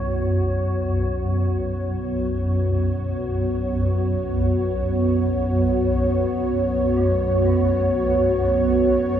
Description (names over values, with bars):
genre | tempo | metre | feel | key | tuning
dark ambient drone | free time | none | none | unclear | A4 = 440 Hz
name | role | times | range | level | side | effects
sweeping resonant pad | sustained chords | 0.0-9.2 s | B3 to C#5 | -21 LUFS | right 1 dB | chorus
swarming drone | drone | 0.0-9.2 s | B1 to F#2 | -22 LUFS | equal | built-in reverb
quartz singing bowl | texture | 0.0-1.1 s | none | barely audible | none | none
gamelan-type bronze metallophone | arpeggios | 7.0-9.2 s | A3 to F#4 | -41 LUFS | right 1 dB | none
room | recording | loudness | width
wet cathedral reverb, RT60 4.9 s | none | -19 LUFS | side -10 dB against mid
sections
0.0-1.1 A section; 1.1-9.2 B section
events
none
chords
0.0 Bsus2